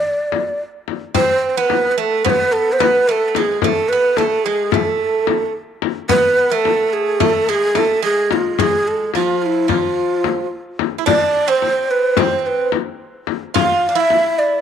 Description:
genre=Turkish makam ensemble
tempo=218 BPM (eighths)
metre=9/8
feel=straight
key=unclear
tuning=A4 = 440 Hz
part: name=breathy mellow ney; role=melody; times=0.0-14.6 s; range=E4 to F5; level=-16 LUFS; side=right 1 dB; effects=none
part: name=frame drum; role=percussion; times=0.3-14.2 s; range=none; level=-20 LUFS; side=left 11 dB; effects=none
part: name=Greek bouzouki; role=second line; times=1.1-14.6 s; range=F3 to F4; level=-22 LUFS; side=right 13 dB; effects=none
room=moderate spring reverb, RT60 2.6 s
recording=1960s-style stereo with parts hard left and right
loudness=-14 LUFS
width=side -8 dB against mid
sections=0.0-1.1 A section; 1.1-14.6 B section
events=none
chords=none

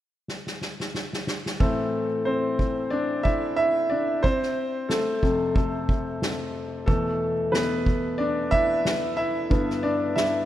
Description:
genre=piano-driven pop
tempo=91 BPM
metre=4/4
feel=swing 56% on 16ths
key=A minor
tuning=A4 = 441 Hz
part: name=soft-mallet drum kit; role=drums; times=0.3-10.3 s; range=kick drum, snare drum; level=-26 LUFS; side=equal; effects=none
part: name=clear grand piano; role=accompaniment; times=1.6-10.5 s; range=E2 to E5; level=-23 LUFS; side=equal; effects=none
room=moderate lush hall reverb, RT60 2.6 s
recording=rough home demo mix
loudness=-22 LUFS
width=side -12 dB against mid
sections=0.0-1.6 A section; 1.6-10.5 B section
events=drum fill 0.3-1.6; grand piano solo 1.6-10.5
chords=0.0 N.C.; 1.6 Am; 4.2 F; 6.9 Esus4; 9.5 G

